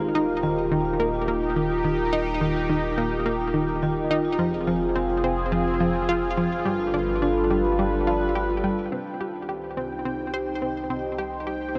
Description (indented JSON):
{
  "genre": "ambient, sequencer-driven space music",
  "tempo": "106 BPM",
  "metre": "4/4",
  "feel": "straight",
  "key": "unclear",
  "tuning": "A4 = 439 Hz",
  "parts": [
    { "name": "sweeping resonant pad", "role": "sustained chords", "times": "0.0-11.8 s", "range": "G3 to C5", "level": "-29 LUFS", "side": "equal", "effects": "chorus" },
    { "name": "vibraphone with soft mallets", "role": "arpeggios", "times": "0.0-8.9 s", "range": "F4", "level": "-30 LUFS", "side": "equal", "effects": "delay" },
    { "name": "warm sub bass", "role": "bass", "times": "0.0-11.8 s", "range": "Eb1 to C2", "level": "-36 LUFS", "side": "equal", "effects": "none" },
    { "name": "analog pluck", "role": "riff", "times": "0.1-11.8 s", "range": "Eb3 to C5", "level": "-29 LUFS", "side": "equal", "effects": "chorus, vintage 12-bit sampler grit, delay" },
    { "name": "bubbling stepped-filter texture", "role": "texture", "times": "8.9-11.8 s", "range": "G5", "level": "-39 LUFS", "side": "equal", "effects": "chorus, built-in reverb" }
  ],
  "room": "wet huge ambient reverb, RT60 6.9 s",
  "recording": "none",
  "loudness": "-25 LUFS",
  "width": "mono",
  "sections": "0.0-8.9 A section; 8.9-11.8 B section",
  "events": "none",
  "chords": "0.0 Eb; 4.4 Fm; 6.7 G7; 8.9 Cm"
}